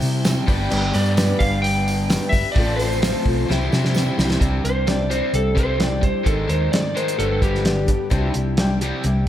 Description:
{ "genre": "folk rock and heartland rock", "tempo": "130 BPM", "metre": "4/4", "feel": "straight", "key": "C major", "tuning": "A4 = 440 Hz", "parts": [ { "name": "electric slide guitar", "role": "melody", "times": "0.0-8.3 s", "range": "G4 to G5", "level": "-24 LUFS", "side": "left 1 dB", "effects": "tape echo" }, { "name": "picked twelve-string acoustic guitar", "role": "accompaniment", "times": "0.0-9.3 s", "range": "G2 to Bb4", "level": "-27 LUFS", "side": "left 3 dB", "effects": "slapback echo" }, { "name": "tonewheel organ", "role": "sustained chords", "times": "0.0-4.4 s", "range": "B3 to C5", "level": "-34 LUFS", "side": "right 1 dB", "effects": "chorus vibrato, slow rotary speaker" }, { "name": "overdriven electric guitar", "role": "riff", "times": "0.0-9.3 s", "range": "G2 to G4", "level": "-25 LUFS", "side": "equal", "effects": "slapback echo" }, { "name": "hollow-body short-scale fingered electric bass", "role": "bass", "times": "0.0-9.3 s", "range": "G1 to C3", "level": "-23 LUFS", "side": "equal", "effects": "none" }, { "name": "cloth-damped thuddy drum kit", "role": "drums", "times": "0.0-9.1 s", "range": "crash cymbal, hi-hat, kick drum, snare drum", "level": "-22 LUFS", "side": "equal", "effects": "none" }, { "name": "tambourine", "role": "percussion", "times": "0.0-4.4 s", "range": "none", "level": "-40 LUFS", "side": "right 4 dB", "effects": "none" } ], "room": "moderate lush hall reverb, RT60 1.7 s", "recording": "big arena sound", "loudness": "-17 LUFS", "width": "side -11 dB against mid", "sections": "0.0-4.4 A section; 4.4-9.3 B section", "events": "drum fill 3.5-4.4; electric slide guitar solo 4.4-9.3", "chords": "0.5 G; 2.6 F/A; 3.5 C; 4.4 Cadd9; 6.3 Abadd9; 7.2 G; 8.1 Cadd9" }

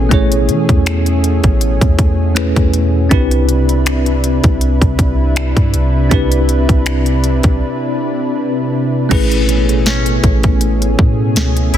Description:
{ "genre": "contemporary R&B", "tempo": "80 BPM", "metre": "4/4", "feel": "swing 54% on 16ths", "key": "A major", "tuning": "A4 = 439 Hz", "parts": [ { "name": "bell-like tine electric piano", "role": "accompaniment", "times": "0.0-11.8 s", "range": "A3 to C#5", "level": "-18 LUFS", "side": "equal", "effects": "medium stereo tremolo" }, { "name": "lush unison pad", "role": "sustained chords", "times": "0.0-11.8 s", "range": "B2 to B4", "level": "-19 LUFS", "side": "equal", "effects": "chorus" }, { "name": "soft 808-style bass", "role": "bass", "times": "0.0-11.8 s", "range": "A1 to E3", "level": "-15 LUFS", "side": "equal", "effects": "none" }, { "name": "trap drum kit", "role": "drums", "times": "0.1-11.8 s", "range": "crash cymbal, finger snaps, hi-hat, kick drum, snare drum", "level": "-14 LUFS", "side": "equal", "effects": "soft clipping on snare" }, { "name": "koto", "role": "texture", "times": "9.9-11.8 s", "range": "C#4 to E4", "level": "-25 LUFS", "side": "left 3 dB", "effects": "ping-pong delay" } ], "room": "little or no reverb", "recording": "dense, heavily limited modern master", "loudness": "-11 LUFS", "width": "side -10 dB against mid", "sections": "0.0-9.1 A section; 9.1-11.8 B section", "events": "break 7.6-9.1", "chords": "0.0 Amaj9; 3.1 Cmaj9; 9.1 Amaj9" }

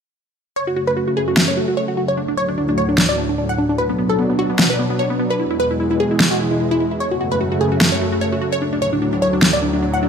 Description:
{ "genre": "heavy wobble dubstep", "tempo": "149 BPM", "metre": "4/4", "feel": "swing 55% on 16ths, half-time", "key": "F# minor", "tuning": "A4 = 440 Hz", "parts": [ { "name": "wide unison pluck", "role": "melody", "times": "0.6-10.1 s", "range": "B3 to F#5", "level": "-19 LUFS", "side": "equal", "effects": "ping-pong delay" }, { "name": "supersaw pad", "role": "sustained chords", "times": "0.6-10.1 s", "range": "D2 to D4", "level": "-21 LUFS", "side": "equal", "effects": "low-pass filter" }, { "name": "electronic snare drum", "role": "drums", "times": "1.4-9.5 s", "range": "none", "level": "-16 LUFS", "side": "equal", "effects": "overdrive, studio reverb" } ], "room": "light reverb, digital ambience", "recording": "none", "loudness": "-16 LUFS", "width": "side -7 dB against mid", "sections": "0.6-10.1 A section", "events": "filter sweep on supersaw synth 0.6-10.1", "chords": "0.6 F#m; 2.2 D; 3.8 Bm; 5.4 E; 7.0 F#m; 8.6 D" }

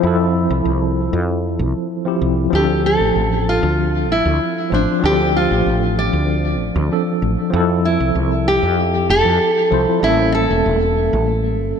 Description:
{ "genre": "sunset chillout", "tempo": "96 BPM", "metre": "4/4", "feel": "straight", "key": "D minor", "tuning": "A4 = 441 Hz", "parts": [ { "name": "mellow tine electric piano", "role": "accompaniment", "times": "0.0-11.8 s", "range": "F3 to C5", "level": "-19 LUFS", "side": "equal", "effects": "overdrive, fast stereo tremolo, auto-pan, diffuse ambient delay" }, { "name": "woody fretless electric bass", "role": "bass", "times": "0.0-11.7 s", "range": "E1 to F2", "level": "-19 LUFS", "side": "equal", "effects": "none" }, { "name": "nylon-string guitar", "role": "melody", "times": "2.5-11.2 s", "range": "D4 to D5", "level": "-18 LUFS", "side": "equal", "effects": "vintage 12-bit sampler grit, diffuse ambient delay" } ], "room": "wet plate reverb, RT60 3.3 s", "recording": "dreamy mix soaked in reverb", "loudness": "-14 LUFS", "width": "side -7 dB against mid", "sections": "0.0-11.8 A section", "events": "none", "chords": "0.0 Fmaj7; 2.5 Dm7; 7.5 Fmaj7; 10.0 A7b9" }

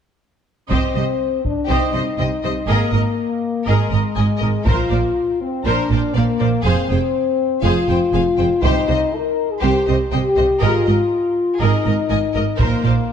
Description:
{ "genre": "cinematic, epic orchestral film score", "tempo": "121 BPM", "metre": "4/4", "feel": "straight", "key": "C minor", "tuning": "A4 = 440 Hz", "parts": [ { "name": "clear symphonic violin section", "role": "second line", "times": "0.7-12.9 s", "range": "G4 to Ab5", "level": "-27 LUFS", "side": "left 6 dB", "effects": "none" }, { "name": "rich symphonic viola section", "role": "accompaniment", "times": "0.7-12.9 s", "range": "Ab4 to Eb5", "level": "-26 LUFS", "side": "right 2 dB", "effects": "none" }, { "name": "mellow French horn section", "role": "sustained chords", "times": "0.7-13.1 s", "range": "Ab3 to Bb4", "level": "-19 LUFS", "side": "left 4 dB", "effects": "none" }, { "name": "clear symphonic cello section", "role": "bass", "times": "0.7-12.9 s", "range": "F2 to C3", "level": "-23 LUFS", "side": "right 4 dB", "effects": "none" }, { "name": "rich symphonic double bass section", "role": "bass", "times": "0.7-12.9 s", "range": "F1 to C2", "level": "-21 LUFS", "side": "right 4 dB", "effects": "none" }, { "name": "taiko ensemble", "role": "drums", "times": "0.7-1.7, 4.7-5.6, 8.6-9.6, 12.6-13.1 s", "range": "none", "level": "-23 LUFS", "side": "equal", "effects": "none" } ], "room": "moderate scoring stage reverb, RT60 2.0 s", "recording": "dark, warm production", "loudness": "-16 LUFS", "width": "side -8 dB against mid", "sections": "0.7-13.1 A section", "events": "none", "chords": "0.7 Cm; 2.7 Absus2; 4.7 Bbadd9; 6.6 Fm; 8.6 Cm; 10.6 Absus2; 12.6 Bbsus2" }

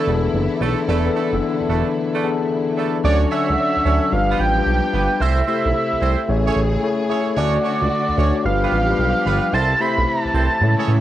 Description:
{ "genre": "R&B", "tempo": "111 BPM", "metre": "4/4", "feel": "swing 66% on 16ths", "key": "unclear", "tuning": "A4 = 442 Hz", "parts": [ { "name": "mellow tine electric piano", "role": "accompaniment", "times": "0.0-11.0 s", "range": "E3 to A5", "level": "-22 LUFS", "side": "left 5 dB", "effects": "cassette tape" }, { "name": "rich studio string section", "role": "sustained chords", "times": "0.0-11.0 s", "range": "C3 to C#5", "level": "-27 LUFS", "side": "right 1 dB", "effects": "cassette tape" }, { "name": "clear horn section", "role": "stabs", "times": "0.0-10.9 s", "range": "A3 to C#5", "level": "-27 LUFS", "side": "right 7 dB", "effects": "cassette tape" }, { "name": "smooth gliding synth bass", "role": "bass", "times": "0.1-11.0 s", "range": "E1 to A2", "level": "-20 LUFS", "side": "right 1 dB", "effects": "none" }, { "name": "octave-doubled lead", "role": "melody", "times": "3.0-11.0 s", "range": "D5 to B5", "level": "-21 LUFS", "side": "right 1 dB", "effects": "chorus" } ], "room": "light reverb, studio reverb", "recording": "home recording on cassette", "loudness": "-16 LUFS", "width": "side -13 dB against mid", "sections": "0.0-3.0 A section; 3.0-11.0 B section", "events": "tine electric piano fill 2.2-3.0", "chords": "0.0 E7sus4; 3.0 Dmaj7; 4.1 G7; 5.2 C6; 6.3 Amaj7; 7.4 Dmaj7; 8.4 G7; 9.5 C6" }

